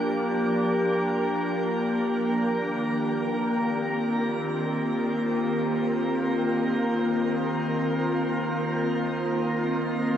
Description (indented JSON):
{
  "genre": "ambient",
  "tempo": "free time",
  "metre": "none",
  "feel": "none",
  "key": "unclear",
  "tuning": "A4 = 440 Hz",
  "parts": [
    { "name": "glassy FM pad", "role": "solo", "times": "0.0-10.2 s", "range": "Eb3 to Bb4", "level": "-24 LUFS", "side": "equal", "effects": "ensemble chorus, built-in reverb, tape echo" }
  ],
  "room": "wet shimmer reverb, RT60 9.0 s",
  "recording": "none",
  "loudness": "-24 LUFS",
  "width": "side -9 dB against mid",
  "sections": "0.0-10.2 A section",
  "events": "none",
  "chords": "0.0 Gm7; 2.3 F7sus4",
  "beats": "free time"
}